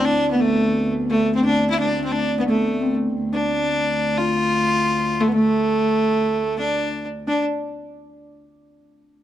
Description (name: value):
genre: medieval dance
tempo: 175 BPM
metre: 3/4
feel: straight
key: D dorian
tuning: A4 = 440 Hz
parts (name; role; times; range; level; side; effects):
- rich fiddle; melody; 0.0-7.4 s; A3 to F4; -21 LUFS; equal; plate reverb
- Celtic harp; second line; 0.0-7.4 s; A3 to F4; -22 LUFS; equal; none
- dark viola da gamba; drone; 0.0-7.3 s; D2; -28 LUFS; left 2 dB; none
room: light reverb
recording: dark, warm production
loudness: -18 LUFS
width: side -12 dB against mid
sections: 0.0-7.3 A section; 7.3-8.3 B section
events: none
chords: none